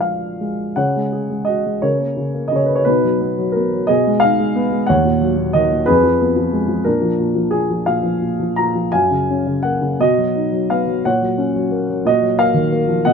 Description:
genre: classical, lyrical solo piano.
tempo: 55-61 BPM (dotted quarters).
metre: 6/8.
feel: rubato.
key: Eb minor.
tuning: A4 = 440 Hz.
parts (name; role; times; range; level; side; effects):
dark concert grand piano; solo; 0.0-13.1 s; Eb2 to Bb5; -15 LUFS; equal; none.
room: light reverb.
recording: none.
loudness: -15 LUFS.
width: side -6 dB against mid.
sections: 0.8-13.1 A section.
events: none.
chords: 0.0 Bb7; 0.8 Dbsus4; 1.8 Bmaj9/C#; 2.9 B; 3.9 Abm/Cb; 4.9 Ebm7; 5.9 Fdim; 6.9 Bb; 8.9 Gbmaj7; 10.0 B; 11.0 Gb/Bb; 12.1 Ebmadd9/Bb.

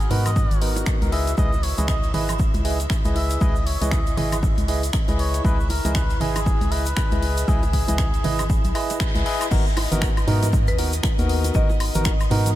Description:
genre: deep house.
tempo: 118 BPM.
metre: 4/4.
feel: swing 59% on 16ths.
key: G# minor.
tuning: A4 = 441 Hz.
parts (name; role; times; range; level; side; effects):
trumpet with cup mute; melody; 0.0-9.0 s; G#4 to E5; -32 LUFS; equal; analog delay.
organ-like FM bass; bass; 0.0-12.6 s; G#1 to G#2; -24 LUFS; equal; sidechain pumping.
house drum kit; drums; 0.0-12.5 s; crash cymbal, finger snaps, hi-hat, woodblock; -30 LUFS; left 2 dB; none.
tube shaker; percussion; 0.0-12.5 s; none; -38 LUFS; right 3 dB; none.
string machine, violins; texture; 0.0-12.6 s; D#4 to F#5; -37 LUFS; equal; ensemble chorus, sidechain pumping.
barky tine electric piano; stabs; 0.1-12.5 s; B3 to D#5; -27 LUFS; moving between left 4 dB and right 5 dB; auto-pan, sidechain pumping, tape echo.
congas and bongos; percussion; 0.1-12.5 s; none; -34 LUFS; right 3 dB; none.
electronic kick drum; drums; 0.4-12.2 s; none; -22 LUFS; equal; none.
marimba with medium hard mallets; melody; 10.7-11.7 s; B4 to D#5; -31 LUFS; left 1 dB; analog delay.
room: light reverb, small room ambience.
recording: none.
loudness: -19 LUFS.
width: side -14 dB against mid.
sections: 0.0-9.5 A section; 9.5-12.6 B section.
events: band accent 9.0; drop 9.5-12.6.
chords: 0.0 G#m9; 1.1 C#m9; 9.5 G#m9.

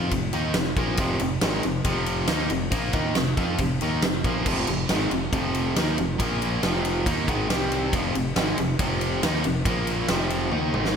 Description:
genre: hard rock.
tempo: 138 BPM.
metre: 4/4.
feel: straight.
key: F minor.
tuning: A4 = 440 Hz.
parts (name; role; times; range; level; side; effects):
overdriven electric guitar; riff; 0.0-11.0 s; F2 to F4; -25 LUFS; equal; none.
growling fingered electric bass; bass; 0.0-10.9 s; F1 to F2; -30 LUFS; equal; overdrive.
big rock drum kit; drums; 0.1-11.0 s; crash cymbal, kick drum, ride cymbal, snare drum, toms; -26 LUFS; equal; gated reverb.
room: moderate lush hall reverb, RT60 1.6 s, small room ambience.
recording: bright 1980s-style digital production.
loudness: -22 LUFS.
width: side -7 dB against mid.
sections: 0.0-11.0 A section.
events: drum fill 10.5-11.0.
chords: 0.0 Fm; 6.2 Bb5; 6.6 Fm; 7.5 C5; 7.9 Fm; 9.7 Bb5; 10.1 Fm.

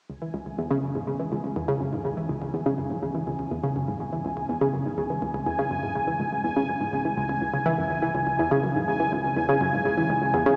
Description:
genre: ambient, sequencer-driven space music.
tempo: 123 BPM.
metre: 4/4.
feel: straight.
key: C# minor.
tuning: A4 = 440 Hz.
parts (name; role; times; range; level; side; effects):
analog pluck; riff; 0.1-10.5 s; C#2 to E3; -28 LUFS; equal; chorus, analog delay.
bubbling stepped-filter texture; texture; 0.1-10.6 s; G#5; -32 LUFS; equal; chorus, built-in reverb.
room: wet cathedral reverb, RT60 5.3 s.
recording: in a vast, echoing space, small speaker sound.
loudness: -26 LUFS.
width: mono.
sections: 0.1-10.6 A section.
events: fade-in on synth texture 0.1-10.6.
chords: 0.1 C#m.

